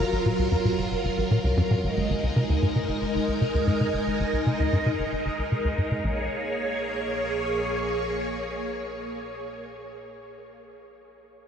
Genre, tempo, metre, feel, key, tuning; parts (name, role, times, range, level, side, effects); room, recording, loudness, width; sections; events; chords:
ambient, sequencer-driven space music; 114 BPM; 4/4; straight; Bb minor; A4 = 440 Hz
phased string machine; sustained chords; 0.0-9.7 s; Gb3 to Db5; -27 LUFS; equal; ensemble chorus, phaser
tight sequencer bass; riff; 0.0-6.3 s; Gb1 to C3; -25 LUFS; equal; analog chorus, cassette tape, tape echo
analog drone; bass; 0.1-7.6 s; Gb1 to Bb1; -44 LUFS; equal; chorus
wet huge ambient reverb, RT60 8.6 s; -24 LUFS; side -8 dB against mid
0.0-6.0 A section; 6.0-10.3 B section
filter sweep on analog synth bass 0.0-6.0
0.0 Gbmaj7; 1.8 Absus2; 6.0 Bbm7